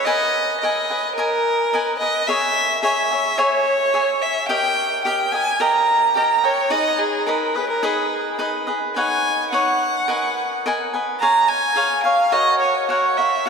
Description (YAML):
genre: mexican folk, mariachi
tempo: 107 BPM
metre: 2/4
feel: straight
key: G# harmonic minor, B major from 8.9 s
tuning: A4 = 440 Hz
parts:
  - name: clear violin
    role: melody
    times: 0.0-13.5 s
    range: G#4 to A#5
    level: -19 LUFS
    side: equal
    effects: none
  - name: cavaquinho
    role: accompaniment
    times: 0.0-13.5 s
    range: D#4 to G#5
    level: -21 LUFS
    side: equal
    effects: none
room: wet cathedral reverb, RT60 5.1 s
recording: recorded in a church or concert hall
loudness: -17 LUFS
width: side -5 dB against mid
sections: 0.1-8.9 A section; 8.9-13.5 B section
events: none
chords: 0.1 G#madd9; 2.3 C#m; 4.5 D#; 6.7 G#m; 8.9 Badd9; 10.1 G#madd9; 11.2 C#; 12.3 F#